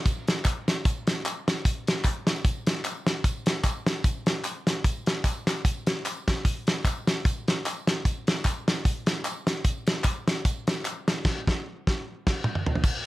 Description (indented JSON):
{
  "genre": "gospel",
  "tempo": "150 BPM",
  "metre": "4/4",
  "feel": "swing 56% on 8ths",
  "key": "none",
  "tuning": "none",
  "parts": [
    { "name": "warm soul drum kit", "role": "drums", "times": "0.1-12.9 s", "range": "crash cymbal, hi-hat, kick drum, snare drum, toms", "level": "-24 LUFS", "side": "equal", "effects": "none" },
    { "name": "tambourine and handclaps", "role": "percussion", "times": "0.1-12.9 s", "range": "none", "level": "-36 LUFS", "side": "left 1 dB", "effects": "none" }
  ],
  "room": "light reverb",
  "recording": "none",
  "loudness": "-24 LUFS",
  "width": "side -18 dB against mid",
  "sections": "0.0-12.8 A section",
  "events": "band accent 11.2-12.8; drum fill 12.0-12.8",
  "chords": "none"
}